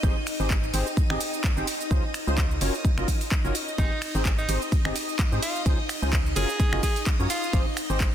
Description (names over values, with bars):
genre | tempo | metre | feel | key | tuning
piano house | 128 BPM | 4/4 | swing 56% on 16ths | Ab major | A4 = 440 Hz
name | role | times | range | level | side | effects
string machine, violins | sustained chords | 0.0-8.1 s | Eb4 to Eb5 | -33 LUFS | equal | ensemble chorus, sidechain pumping
percussive organ stab | riff | 0.0-8.1 s | C4 to Eb5 | -32 LUFS | equal | ensemble chorus, sidechain pumping, digital delay
organ-like FM bass | bass | 0.0-8.1 s | Gb1 to Ab2 | -28 LUFS | equal | tube saturation, sidechain pumping
electronic kick drum | drums | 0.0-8.1 s | none | -24 LUFS | equal | studio ambience
house drum kit | drums | 0.0-8.1 s | finger snaps, handclaps, hi-hat, ride cymbal, shaker | -31 LUFS | right 1 dB | soft clipping on snare, studio ambience
bright tenor saxophone | melody | 3.8-7.6 s | Eb4 to Ab4 | -32 LUFS | equal | digital delay
room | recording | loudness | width
little or no reverb | dense, heavily limited modern master | -23 LUFS | side -10 dB against mid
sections
0.0-8.1 A section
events
none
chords
0.0 Abmaj7; 1.7 Dbmaj9; 2.6 Gbmaj7; 3.8 Abmaj7; 5.4 Dbmaj9; 6.4 Gbmaj7; 7.5 Abmaj7